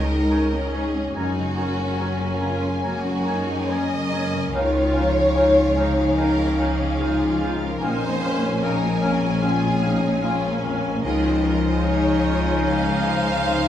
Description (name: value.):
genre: cinematic.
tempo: 73 BPM.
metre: 4/4.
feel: rubato.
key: Db major.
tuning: A4 = 440 Hz.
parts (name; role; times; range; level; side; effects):
rich symphonic violin section; melody; 0.0-13.7 s; Eb5 to Ab5; -32 LUFS; left 2 dB; none.
clear clarinet; second line; 0.0-13.7 s; Db4 to Eb4; -32 LUFS; equal; none.
clear oboe; second line; 0.0-13.7 s; F5 to Ab5; -36 LUFS; right 2 dB; none.
rich symphonic violin section; second line; 0.0-13.7 s; F4 to F5; -26 LUFS; equal; none.
felt-muted upright piano; accompaniment; 0.0-13.7 s; Bb1 to Ab4; -29 LUFS; left 2 dB; none.
rich symphonic viola section; accompaniment; 0.0-13.7 s; Bb3 to C5; -30 LUFS; equal; none.
mellow French horn section; sustained chords; 0.0-13.7 s; Ab3 to Eb4; -27 LUFS; equal; none.
concert harp; arpeggios; 0.0-13.7 s; Gb2 to Ab5; -29 LUFS; left 5 dB; none.
rich symphonic cello section; bass; 0.0-13.7 s; Db2 to Db3; -29 LUFS; equal; none.
warm symphonic double bass section; bass; 0.0-13.7 s; Gb1 to Db2; -27 LUFS; equal; none.
silver concert flute; second line; 0.3-13.7 s; Ab5 to Db6; -36 LUFS; equal; none.
room: wet stone room reverb, RT60 1.0 s.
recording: small room ambience.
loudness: -19 LUFS.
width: side -10 dB against mid.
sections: 0.0-13.7 A section.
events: none.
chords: 0.0 Dbsus2; 1.2 Gbadd9; 4.5 Dbadd9; 7.8 Bbm7; 11.0 Dbadd9.